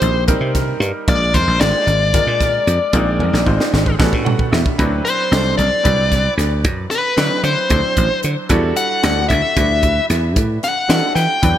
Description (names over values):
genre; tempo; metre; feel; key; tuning
electric jazz fusion; 226 BPM (eighths); 7/8; straight; Bb mixolydian, D mixolydian from 4.8 s; A4 = 440 Hz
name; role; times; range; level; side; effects
dark smooth lead guitar; melody; 0.0-11.6 s; B4 to G5; -18 LUFS; left 2 dB; overdrive
bright grand piano; accompaniment; 0.0-11.6 s; F#3 to F#5; -23 LUFS; right 1 dB; none
dry thumbed slap bass; bass; 0.0-11.5 s; Ab1 to E3; -18 LUFS; right 1 dB; none
crisp fusion drum kit; drums; 0.0-11.5 s; hi-hat, kick drum, snare drum, toms; -19 LUFS; equal; gated reverb
room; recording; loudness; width
moderate lush hall reverb, RT60 2.2 s; bright 1980s-style digital production; -14 LUFS; side -11 dB against mid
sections
0.0-4.8 A section; 4.8-11.6 B section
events
drum fill 3.2-4.8; grand piano fill 4.0-4.8; lead electric guitar solo 4.8-11.6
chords
0.0 Cm7; 1.1 Bb7; 2.9 Bb9sus4; 4.0 A13; 4.8 D13; 8.5 Em11